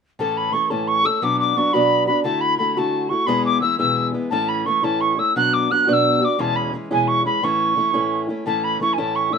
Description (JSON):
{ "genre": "celtic folk", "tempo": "116 BPM (dotted quarters)", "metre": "6/8", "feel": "straight", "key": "A major", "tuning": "A4 = 440 Hz", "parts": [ { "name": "mellow tin whistle", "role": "melody", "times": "0.2-9.4 s", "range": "G#5 to F#6", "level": "-19 LUFS", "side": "equal", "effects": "none" }, { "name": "fingerpicked steel-string acoustic guitar", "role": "accompaniment", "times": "0.2-9.4 s", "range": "E2 to A4", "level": "-21 LUFS", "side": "equal", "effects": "none" } ], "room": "light reverb", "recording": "close, detailed microphones", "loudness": "-17 LUFS", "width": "side -6 dB against mid", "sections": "0.2-8.4 A section", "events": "none", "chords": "0.2 A; 1.2 Bm; 2.3 Dadd9; 3.3 E; 4.3 A; 5.3 Bm; 6.4 E6; 7.4 A" }